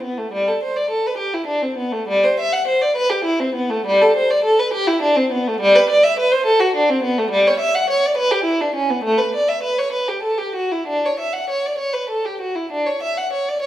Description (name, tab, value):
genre	classical, baroque-style suite movement for unaccompanied violin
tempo	68 BPM (dotted quarters)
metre	12/8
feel	rubato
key	G major, D major from 7.3 s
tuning	A4 = 442 Hz
part	rich violin	solo	0.0-13.7 s	G3 to F#5	-16 LUFS	equal	none
room	moderate recital hall reverb, RT60 1.6 s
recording	none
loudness	-16 LUFS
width	side -13 dB against mid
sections	0.0-13.7 A section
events	none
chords	none